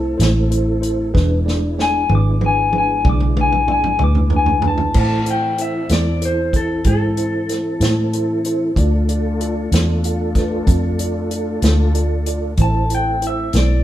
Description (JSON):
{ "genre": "slow blues", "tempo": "63 BPM (dotted quarters)", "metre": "12/8", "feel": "straight", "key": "A harmonic minor", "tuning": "A4 = 441 Hz", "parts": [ { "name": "electric guitar through a small old amp", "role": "melody", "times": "0.0-13.8 s", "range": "A4 to D6", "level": "-20 LUFS", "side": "left 4 dB", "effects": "none" }, { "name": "tine electric piano", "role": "accompaniment", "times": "0.0-13.8 s", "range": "D4 to F5", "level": "-24 LUFS", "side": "right 2 dB", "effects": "fast stereo tremolo" }, { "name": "tonewheel organ", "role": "sustained chords", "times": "0.0-13.8 s", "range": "E3 to A4", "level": "-26 LUFS", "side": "left 2 dB", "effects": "slow rotary speaker, chorus vibrato" }, { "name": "vintage muted fingered electric bass", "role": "bass", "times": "0.0-13.8 s", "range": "E1 to A2", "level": "-18 LUFS", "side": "equal", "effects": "none" }, { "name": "warm soul drum kit", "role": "drums", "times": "0.2-13.7 s", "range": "crash cymbal, hi-hat, kick drum, snare drum, toms", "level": "-20 LUFS", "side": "equal", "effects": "none" } ], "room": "wet large studio reverb, RT60 0.9 s", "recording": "band playing live in one room", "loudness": "-15 LUFS", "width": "side -13 dB against mid", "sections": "0.0-5.0 A section; 5.0-13.8 A section", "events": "drum fill 1.1-5.0", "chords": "0.0 Am; 1.1 E7; 5.0 Am; 8.8 Dm; 12.6 Am" }